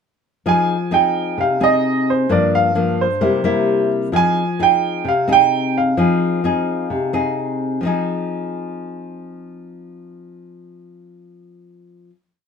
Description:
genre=bossa nova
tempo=130 BPM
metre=4/4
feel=straight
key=F minor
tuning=A4 = 440 Hz
part: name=clear concert grand piano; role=melody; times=0.5-7.3 s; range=C5 to Ab5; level=-18 LUFS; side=right 5 dB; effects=none
part: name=nylon-string guitar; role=accompaniment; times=0.5-12.2 s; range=G2 to Ab4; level=-19 LUFS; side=left 3 dB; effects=none
room=light reverb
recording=minimal, uncompressed stereo recording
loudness=-15 LUFS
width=side -6 dB against mid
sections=0.5-7.8 A section; 7.8-11.5 final chord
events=none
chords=0.5 Fm7; 2.3 Gm7; 3.2 C7; 4.1 Fm7

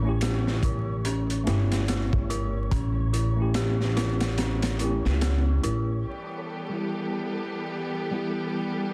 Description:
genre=trip hop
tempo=72 BPM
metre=4/4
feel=swing 60% on 16ths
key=E dorian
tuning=A4 = 444 Hz
part: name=tine electric piano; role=accompaniment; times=0.0-8.9 s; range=G3 to G4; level=-34 LUFS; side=equal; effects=tremolo, tape echo
part: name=dark detuned synth bell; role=arpeggios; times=0.0-6.1 s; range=C#4 to G4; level=-36 LUFS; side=equal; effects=chorus, tape echo
part: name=upright bass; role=bass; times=0.0-6.0 s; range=G1 to C#2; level=-28 LUFS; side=equal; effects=tube saturation
part: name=flickering grainy texture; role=texture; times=0.0-8.9 s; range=A4 to C#5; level=-45 LUFS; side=equal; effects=built-in reverb
part: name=crunchy breakbeat drum kit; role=drums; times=0.2-5.9 s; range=hi-hat, kick drum, snare drum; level=-32 LUFS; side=equal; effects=none
part: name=clear studio string section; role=sustained chords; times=6.1-8.9 s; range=E3 to G4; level=-35 LUFS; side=equal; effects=none
room=studio reverb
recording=dense, heavily limited modern master, vinyl crackle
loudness=-27 LUFS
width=mono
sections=0.0-6.1 A section; 6.1-8.9 B section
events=kick drops out 4.4-6.1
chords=0.0 A7; 6.1 Em

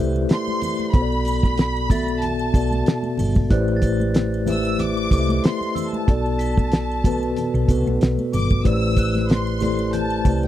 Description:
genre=lush 1970s-style soul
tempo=93 BPM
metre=4/4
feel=swing 54% on 16ths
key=A dorian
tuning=A4 = 440 Hz
part: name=mellow tine electric piano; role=accompaniment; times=0.0-10.5 s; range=B2 to E5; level=-23 LUFS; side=left 2 dB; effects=medium stereo tremolo
part: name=hollow-body short-scale fingered electric bass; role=bass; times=0.0-10.5 s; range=G1 to C2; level=-23 LUFS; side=equal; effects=none
part: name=glockenspiel with rubber mallets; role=texture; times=0.0-10.5 s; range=E6 to B6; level=-39 LUFS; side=right 2 dB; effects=none
part: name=congas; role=percussion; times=0.2-10.5 s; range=none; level=-31 LUFS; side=right 3 dB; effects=none
part: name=triangle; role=percussion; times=0.2-10.5 s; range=none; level=-45 LUFS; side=right 4 dB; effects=none
part: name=warm studio violin section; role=melody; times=0.3-10.5 s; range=G5 to E6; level=-28 LUFS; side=equal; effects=none
part: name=cloth-damped thuddy drum kit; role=drums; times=0.3-10.4 s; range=hi-hat, kick drum, snare drum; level=-18 LUFS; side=equal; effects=none
room=small room ambience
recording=dry, close 1970s-style studio recording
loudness=-18 LUFS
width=side -13 dB against mid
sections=0.0-10.5 A section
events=none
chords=0.0 Am11; 0.9 Bm7; 3.5 Am11; 6.1 Bm7; 8.6 Am11

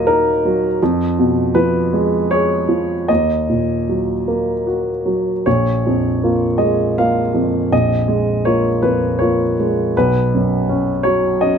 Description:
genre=neoclassical minimalist piano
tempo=75-84 BPM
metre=3/4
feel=rubato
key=unclear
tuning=A4 = 440 Hz
part: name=warm baby grand piano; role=solo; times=0.0-11.6 s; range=Bb1 to F5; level=-14 LUFS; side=equal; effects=none
room=light reverb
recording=dark, warm production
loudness=-14 LUFS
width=side -7 dB against mid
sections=0.0-5.5 A section; 5.5-11.6 B section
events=none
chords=0.0 Ebm; 0.8 Fdim; 3.1 Ebm; 5.5 Bbm7; 9.9 Bsus2

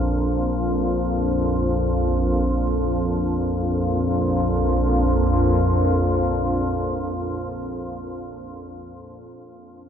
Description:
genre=dark ambient drone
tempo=free time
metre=none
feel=none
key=unclear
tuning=A4 = 440 Hz
part: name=organ-like drone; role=solo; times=0.0-7.6 s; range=Bb1 to F2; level=-20 LUFS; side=equal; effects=ensemble chorus, built-in reverb
room=wet huge ambient reverb, RT60 8.1 s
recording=dreamy mix soaked in reverb, cassette tape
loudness=-19 LUFS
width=side -8 dB against mid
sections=0.0-3.2 A section; 3.2-8.4 B section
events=none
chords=0.0 Bb5

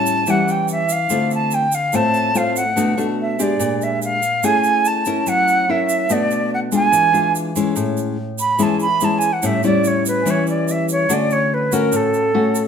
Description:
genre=bossa nova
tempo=144 BPM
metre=4/4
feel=straight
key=A major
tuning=A4 = 440 Hz
part: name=silver concert flute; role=melody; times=0.0-12.7 s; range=A4 to B5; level=-18 LUFS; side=right 3 dB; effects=none
part: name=nylon-string guitar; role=accompaniment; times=0.0-12.7 s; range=A2 to Bb4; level=-19 LUFS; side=left 3 dB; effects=none
part: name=egg shaker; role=percussion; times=0.1-12.7 s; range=none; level=-29 LUFS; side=right 6 dB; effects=none
room=wet stone room reverb, RT60 1.0 s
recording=band playing live in one room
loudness=-15 LUFS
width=side -7 dB against mid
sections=0.0-7.8 A section; 7.8-12.7 B section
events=flute solo 7.8-12.7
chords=0.0 A7; 1.1 Dm7; 2.8 Bm7; 3.6 Bb6; 4.4 Amaj7; 5.3 F#7; 6.1 Bm7; 6.9 E7b9; 7.8 Amaj7; 9.4 A7; 11.1 Dmaj7

